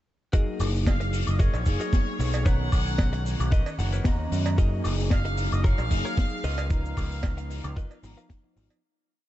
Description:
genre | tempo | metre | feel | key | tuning
nu-disco, nu disco | 113 BPM | 4/4 | straight | F# major | A4 = 440 Hz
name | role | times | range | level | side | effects
bell-like tine electric piano | accompaniment | 0.3-8.8 s | D#3 to A#5 | -34 LUFS | equal | ensemble chorus, sidechain pumping, tape echo
direct-recorded clean electric guitar | riff | 0.3-8.5 s | D#4 to F#5 | -38 LUFS | left 2 dB | lush chorus, tape echo
electronic kick drum | drums | 0.3-8.4 s | none | -23 LUFS | equal | none
open jazz drum kit | drums | 0.3-8.8 s | cabasa, hi-hat, snare drum, woodblock | -35 LUFS | left 3 dB | none
picked electric bass | bass | 0.6-8.7 s | F#1 to F#2 | -27 LUFS | equal | tube saturation
clear trumpet section | melody | 0.9-7.7 s | C#5 to F#5 | -36 LUFS | equal | tape echo
cowbell | percussion | 0.9-8.8 s | none | -42 LUFS | right 6 dB | none
room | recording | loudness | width
studio ambience | nothing above 8.0 kHz | -23 LUFS | side -14 dB against mid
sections
0.3-8.8 drop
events
drop 0.3-8.8; clean electric guitar fill 3.5-4.6; fade-out 6.0-8.8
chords
0.3 F#69; 2.5 Bmaj9; 4.6 F#69; 6.4 C#13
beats
| 0.34 0.87 1.40 1.93 | 2.46 2.99 3.52 4.05 | 4.58 5.11 5.64 6.17 | 6.71 7.24 7.77 8.30

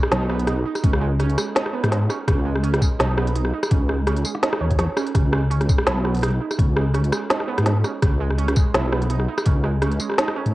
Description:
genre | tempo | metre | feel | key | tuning
half-time drum and bass | 167 BPM | 4/4 | swing 54% on 16ths, half-time | C# minor | A4 = 442 Hz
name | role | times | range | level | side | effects
warbly dusty pluck | arpeggios | 0.0-10.5 s | G#3 to C#5 | -28 LUFS | right 7 dB | chorus, cassette tape, tape echo
organic electronic drum kit | drums | 0.0-10.5 s | hi-hat, rim click, snare drum, tambourine | -24 LUFS | equal | cassette tape
deep soft wobble bass | bass | 0.1-10.5 s | B1 to G#2 | -21 LUFS | equal | chorus
electronic kick drum | drums | 0.8-9.5 s | none | -19 LUFS | equal | cassette tape
room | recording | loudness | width
light reverb, digital ambience | home recording on cassette | -18 LUFS | side -18 dB against mid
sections
0.0-10.5 A section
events
none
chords
0.0 C#sus2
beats
0.12 0.48 | 0.84 1.20 1.55 1.92 | 2.27 2.63 2.99 3.35 | 3.71 4.07 4.43 4.79 | 5.15 5.51 5.87 6.23 | 6.58 6.95 7.30 7.66 | 8.02 8.38 8.74 9.10 | 9.46 9.82 10.18 10.54

